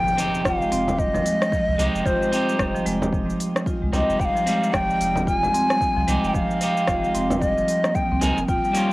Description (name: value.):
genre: organic downtempo.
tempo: 112 BPM.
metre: 4/4.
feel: swing 59% on 16ths.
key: F minor.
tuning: A4 = 440 Hz.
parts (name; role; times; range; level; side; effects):
breathy bright ney; melody; 0.0-8.9 s; C5 to Ab5; -23 LUFS; equal; cassette tape, shimmer reverb.
marimba with medium hard mallets; arpeggios; 0.0-8.9 s; F3 to F4; -25 LUFS; equal; cassette tape, analog delay.
impact; sound effects; 0.0-2.1 s; none; -35 LUFS; equal; none.
deep house drum kit; drums; 0.1-8.9 s; cabasa, hi-hat, rim click; -28 LUFS; equal; cassette tape.
electric guitar at the edge of break-up; accompaniment; 0.2-8.9 s; G3 to Bb4; -29 LUFS; right 2 dB; sidechain pumping, cassette tape, shimmer reverb.
electronic kick drum; drums; 0.4-8.6 s; none; -28 LUFS; equal; overdrive, cassette tape.
warm sub bass; bass; 0.5-8.6 s; Eb1 to C2; -29 LUFS; equal; none.
frame drum; percussion; 0.9-8.3 s; none; -29 LUFS; right 1 dB; none.
warm analog pad; sustained chords; 8.5-8.9 s; F3 to Eb4; -33 LUFS; left 2 dB; none.
drifting glass-harmonics texture; texture; 8.6-8.9 s; G6; -49 LUFS; right 4 dB; none.
room: moderate studio reverb, RT60 0.5 s.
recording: home recording on cassette.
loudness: -19 LUFS.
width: side -19 dB against mid.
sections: 0.0-8.9 A section.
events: impact 0.0-2.1.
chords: 0.0 Fm9.